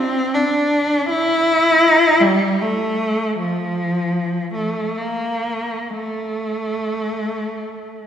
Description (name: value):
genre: classical, free, expressive piece for unaccompanied cello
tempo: free time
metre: none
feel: none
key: unclear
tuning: A4 = 439 Hz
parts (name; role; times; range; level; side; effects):
- rich cello; solo; 0.0-8.1 s; F3 to E4; -17 LUFS; equal; none
room: wet concert hall reverb, RT60 1.9 s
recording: recorded in a church or concert hall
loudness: -16 LUFS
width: side -9 dB against mid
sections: 0.0-8.1 A section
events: none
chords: none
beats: free time